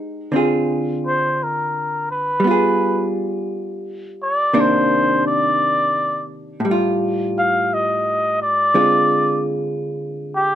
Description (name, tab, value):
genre	jazz ballad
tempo	57 BPM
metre	4/4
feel	swing 68% on 8ths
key	unclear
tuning	A4 = 440 Hz
part	vintage hollow-body jazz guitar	accompaniment	0.0-10.6 s	A2 to Ab4	-20 LUFS	equal	none
part	trumpet with cup mute	melody	1.1-10.6 s	G4 to F5	-17 LUFS	equal	none
room	light reverb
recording	close, detailed microphones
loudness	-16 LUFS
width	side -11 dB against mid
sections	0.0-10.6 A section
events	muted trumpet solo 0.0-10.6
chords	0.3 Dm7b5; 2.4 G7b9; 4.5 Cm9; 6.6 F9/A; 8.7 Dm7b5